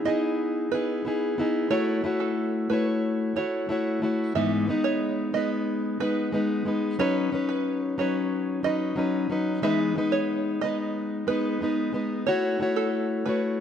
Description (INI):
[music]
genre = acoustic pop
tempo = 91 BPM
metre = 4/4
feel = straight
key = E major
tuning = A4 = 440 Hz
[part]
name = fingerpicked plugged-in steel-string acoustic guitar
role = accompaniment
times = 0.0-13.6 s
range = G#2 to C#5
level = -24 LUFS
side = left 1 dB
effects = none
[part]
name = open-back banjo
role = arpeggios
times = 0.1-13.4 s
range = A4 to E5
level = -31 LUFS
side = right 6 dB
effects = none
[sound]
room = moderate plate reverb, RT60 2.8 s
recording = none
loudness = -24 LUFS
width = side -8 dB against mid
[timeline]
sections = 0.0-13.6 A section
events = none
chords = 0.0 Emaj7; 1.7 A6; 4.4 Emaj7/G#; 7.0 Badd9/F#; 9.6 Emaj7; 12.3 A6